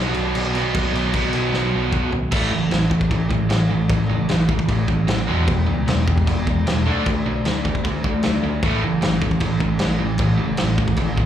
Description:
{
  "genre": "punk rock",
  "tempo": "152 BPM",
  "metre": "4/4",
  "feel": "straight",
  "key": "unclear",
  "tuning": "A4 = 440 Hz",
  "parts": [
    { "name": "cranked stack guitar", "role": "riff", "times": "0.0-11.3 s", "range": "A2 to D#4", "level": "-25 LUFS", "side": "left 10 dB", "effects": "overdrive" },
    { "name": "overdriven electric guitar", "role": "riff", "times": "0.0-11.3 s", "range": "E2 to D4", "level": "-22 LUFS", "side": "right 5 dB", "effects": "none" },
    { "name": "overdriven picked electric bass", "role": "bass", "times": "0.0-11.3 s", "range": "E1 to D2", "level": "-24 LUFS", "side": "left 1 dB", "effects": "none" },
    { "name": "loose indie drum kit", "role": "drums", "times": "0.1-11.3 s", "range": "crash cymbal, kick drum, snare drum, toms", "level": "-23 LUFS", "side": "equal", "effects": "none" }
  ],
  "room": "studio reverb",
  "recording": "live gig heard through the venue's PA, club reverb",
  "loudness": "-17 LUFS",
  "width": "side -10 dB against mid",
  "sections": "0.0-2.3 A section; 2.3-11.3 B section",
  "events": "half time 0.0-2.3; drum fill 1.5-2.3",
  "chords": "0.0 B; 2.3 A5; 5.3 E; 6.9 D5; 8.6 A5",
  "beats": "0.36 | 0.75 1.15 1.54 1.94 | 2.33 2.72 3.12 3.51 | 3.91 4.30 4.69 5.09 | 5.48 5.88 6.27 6.66 | 7.06 7.45 7.84 8.24 | 8.63 9.02 9.41 9.81 | 10.20 10.59 10.98"
}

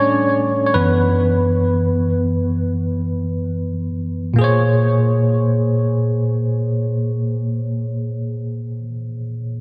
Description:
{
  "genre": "R&B",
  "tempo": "free time",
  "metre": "none",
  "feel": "none",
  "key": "unclear",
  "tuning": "A4 = 440 Hz",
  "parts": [
    { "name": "bell-like tine electric piano", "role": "solo", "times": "0.0-9.6 s", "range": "Gb2 to D5", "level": "-19 LUFS", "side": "equal", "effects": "diffuse ambient delay" }
  ],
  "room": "wet lush hall reverb, RT60 2.7 s",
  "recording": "dreamy mix soaked in reverb",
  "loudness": "-19 LUFS",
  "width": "mono",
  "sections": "0.0-4.4 A section; 4.4-8.0 B section",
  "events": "tine electric piano solo 0.0-4.4",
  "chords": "0.0 A7sus4; 0.7 Gb7sus4; 4.4 Bbm9",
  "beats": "free time"
}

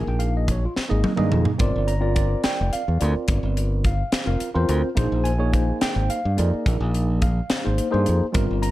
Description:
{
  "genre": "electric jazz fusion",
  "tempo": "71 BPM (dotted quarters)",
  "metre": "6/8",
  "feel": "straight",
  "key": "unclear",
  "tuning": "A4 = 440 Hz",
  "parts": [
    { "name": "bright tine electric piano", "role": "accompaniment", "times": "0.0-8.7 s", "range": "G3 to Bb5", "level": "-25 LUFS", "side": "equal", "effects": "medium stereo tremolo, phaser" },
    { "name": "modern bright fingered electric bass", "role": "bass", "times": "0.0-8.7 s", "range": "F1 to G2", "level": "-22 LUFS", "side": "equal", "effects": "none" },
    { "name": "crisp fusion drum kit", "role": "drums", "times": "0.2-8.7 s", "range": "hi-hat, kick drum, snare drum, toms", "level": "-24 LUFS", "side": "equal", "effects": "none" }
  ],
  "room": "light reverb, small room ambience",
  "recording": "dark, warm production",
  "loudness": "-19 LUFS",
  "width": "side -16 dB against mid",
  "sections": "0.0-8.7 A section",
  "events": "drum fill 0.8-1.6",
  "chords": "0.0 Bb7sus4; 1.6 Gm7; 5.0 Bb9sus4",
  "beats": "0.76 | 1.60 2.45 | 3.29 4.13 | 4.98 5.82 | 6.67 7.51 | 8.36"
}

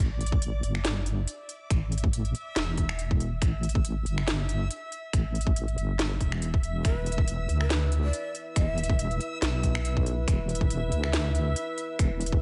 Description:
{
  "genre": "deep dubstep",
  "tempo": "140 BPM",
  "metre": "4/4",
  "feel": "swing 55% on 16ths, half-time",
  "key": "unclear",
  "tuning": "A4 = 436 Hz",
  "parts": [
    { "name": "deep soft wobble bass", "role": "bass", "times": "0.0-12.4 s", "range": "E1 to D2", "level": "-30 LUFS", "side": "equal", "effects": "chorus" },
    { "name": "backwards swelling texture", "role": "texture", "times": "0.1-12.4 s", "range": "E5", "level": "-42 LUFS", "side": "equal", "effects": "built-in reverb" },
    { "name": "garage drum kit", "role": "drums", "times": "0.2-12.4 s", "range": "finger snaps, hi-hat, snare drum", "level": "-35 LUFS", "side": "equal", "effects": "none" },
    { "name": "electronic kick drum", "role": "drums", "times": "0.3-12.4 s", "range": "none", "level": "-28 LUFS", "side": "equal", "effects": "none" },
    { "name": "breathy hollow shakuhachi", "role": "melody", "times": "6.8-9.2 s", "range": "B4 to E5", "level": "-39 LUFS", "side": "equal", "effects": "dub echo" },
    { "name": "dark analog pad", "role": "sustained chords", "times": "6.8-12.4 s", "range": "E4 to E5", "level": "-40 LUFS", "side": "equal", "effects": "chorus" }
  ],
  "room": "little or no reverb",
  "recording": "nothing above 10.9 kHz",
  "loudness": "-28 LUFS",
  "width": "mono",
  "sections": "0.0-12.4 A section",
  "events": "none",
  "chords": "0.0 A5; 6.8 E5",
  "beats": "0.42 0.85 1.28 | 1.71 2.13 2.56 2.99 | 3.42 3.85 4.28 4.71 | 5.13 5.56 5.99 6.42 | 6.85 7.28 7.71 8.13 | 8.56 8.99 9.42 9.85 | 10.28 10.71 11.13 11.56 | 11.99"
}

